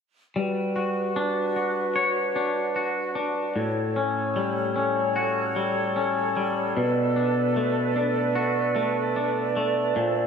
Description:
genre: dream pop.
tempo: 75 BPM.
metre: 4/4.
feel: straight.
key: G lydian.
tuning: A4 = 438 Hz.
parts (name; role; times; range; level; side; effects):
small flute group; sustained chords; 0.4-10.3 s; F#4 to D5; -26 LUFS; right 3 dB; none.
twangy electric guitar; arpeggios; 0.4-10.3 s; A2 to C#5; -25 LUFS; left 2 dB; wide subtle chorus, digital delay.
room: wet lush hall reverb, RT60 1.8 s, small room ambience.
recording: none.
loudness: -23 LUFS.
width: side -6 dB against mid.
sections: 0.4-10.3 A section.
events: none.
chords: 0.4 Gmaj7#11; 3.6 A6; 6.8 Bm7.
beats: | 0.36 1.16 1.96 2.76 | 3.56 4.36 5.16 5.96 | 6.76 7.56 8.36 9.16 | 9.96.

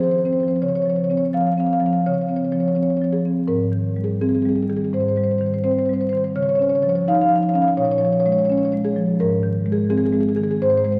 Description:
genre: classical, contemporary piece for solo marimba.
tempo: 84 BPM.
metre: 4/4.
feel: rubato.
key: unclear.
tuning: A4 = 440 Hz.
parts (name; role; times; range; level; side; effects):
marimba with soft mallets; solo; 0.0-11.0 s; Ab2 to F5; -20 LUFS; equal; none.
room: wet church reverb, RT60 2.8 s.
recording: vinyl crackle.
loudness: -20 LUFS.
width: mono.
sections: 0.6-11.0 A section.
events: none.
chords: 0.0 Ab6; 0.6 Dbmaj7; 3.5 Abmaj7; 6.4 Dbadd9; 7.8 Bbm7; 9.2 Ab.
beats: | 0.63 1.35 2.06 2.78 | 3.50 4.21 4.92 5.64 | 6.36 7.07 7.78 8.50 | 9.21 9.91 10.62.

